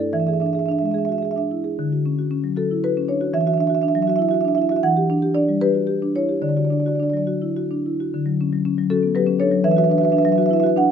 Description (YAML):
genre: classical, contemporary piece for solo marimba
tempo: 70-81 BPM (dotted quarters)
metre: 6/8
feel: rubato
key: D major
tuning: A4 = 440 Hz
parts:
  - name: marimba with soft mallets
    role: solo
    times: 0.0-10.9 s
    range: D3 to F#5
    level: -18 LUFS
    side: equal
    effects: none
room: light reverb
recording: close, detailed microphones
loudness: -18 LUFS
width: side -7 dB against mid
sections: 0.0-8.1 A section; 8.1-10.9 A section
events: none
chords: 0.1 E7; 1.8 Dmaj7; 3.3 Esus2; 4.8 Em9; 6.4 D; 8.1 Dmaj7; 9.6 Esus2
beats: | 0.14 0.96 | 1.77 2.56 | 3.32 4.07 | 4.83 5.60 | 6.43 7.28 | 8.12 8.89 | 9.64 10.39